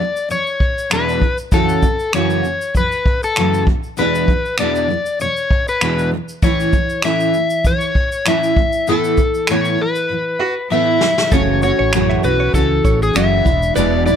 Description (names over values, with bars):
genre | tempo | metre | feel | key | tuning
acoustic pop | 98 BPM | 4/4 | swing 55% on 16ths | A major | A4 = 440 Hz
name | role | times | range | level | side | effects
overdriven slide guitar | melody | 0.0-14.2 s | G#4 to E5 | -18 LUFS | left 3 dB | none
nylon-string guitar | accompaniment | 0.0-14.2 s | E2 to F#4 | -18 LUFS | right 1 dB | double-tracked left and right
vintage brush drum kit | drums | 0.2-14.2 s | finger snaps, kick drum, shaker, snare drum | -18 LUFS | equal | none
clear cello | second line | 10.4-11.3 s | E4 to F#4 | -22 LUFS | right 6 dB | none
direct-recorded clean electric guitar | arpeggios | 11.3-13.9 s | A4 to E5 | -26 LUFS | right 4 dB | none
mellow fretless electric bass | bass | 11.3-14.2 s | E1 to C#2 | -19 LUFS | equal | ensemble chorus
room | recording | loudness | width
small room ambience | none | -14 LUFS | side -8 dB against mid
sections
0.0-11.3 A section; 11.3-14.2 B section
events
drum fill 10.1-11.3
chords
0.0 E7; 1.5 F#m7; 3.7 E7; 6.4 A; 8.6 Asus2; 11.3 F#m7; 13.5 E7